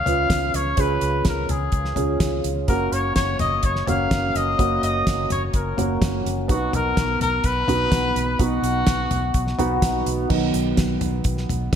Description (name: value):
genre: piano-driven pop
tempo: 126 BPM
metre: 4/4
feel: straight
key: unclear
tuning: A4 = 440 Hz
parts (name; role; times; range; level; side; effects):
- warm trumpet; melody; 0.0-10.0 s; F#4 to E#5; -24 LUFS; left 2 dB; none
- felt-muted upright piano; accompaniment; 0.0-11.8 s; B2 to B4; -24 LUFS; right 2 dB; wide subtle chorus
- vintage muted fingered electric bass; bass; 0.1-11.8 s; F#1 to C#2; -27 LUFS; equal; none
- damped 70s drum kit; drums; 0.1-11.8 s; crash cymbal, hi-hat, kick drum, snare drum, toms; -24 LUFS; equal; gated reverb
room: moderate lush hall reverb, RT60 1.8 s, studio ambience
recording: bright 1980s-style digital production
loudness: -19 LUFS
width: side -8 dB against mid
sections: 0.0-10.3 A section; 10.3-11.8 B section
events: felt piano solo 10.3-11.8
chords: 0.0 C#; 2.7 F#; 6.5 B